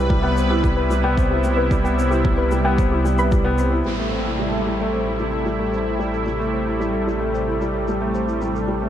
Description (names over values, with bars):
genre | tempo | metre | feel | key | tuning
piano and strings electronica | 112 BPM | 4/4 | straight | A minor | A4 = 442 Hz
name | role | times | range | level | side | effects
lush unison pad | sustained chords | 0.0-8.9 s | C3 to B4 | -25 LUFS | equal | chorus, phaser, sidechain pumping
soft round pluck | arpeggios | 0.0-3.8 s | G4 to B5 | -28 LUFS | left 2 dB | analog chorus, sidechain pumping, digital delay
warm upright piano | riff | 0.0-8.9 s | G3 to B4 | -22 LUFS | left 1 dB | digital delay
dark detuned saw bass | bass | 0.0-8.9 s | A1 to C2 | -24 LUFS | equal | sidechain pumping
electronic kick drum | drums | 0.1-3.4 s | none | -20 LUFS | equal | none
shaker | drums | 0.4-8.7 s | none | -48 LUFS | left 3 dB | low-pass filter on perc, low-pass filter on room
downlifter | sound effects | 3.9-8.1 s | none | -31 LUFS | right 1 dB | none
room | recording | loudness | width
light reverb, small room ambience | none | -18 LUFS | side -10 dB against mid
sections
0.0-3.9 A section; 3.9-8.9 B section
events
filter sweep on synth arpeggio sound 0.0-3.9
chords
0.0 Cmaj7; 3.9 Am7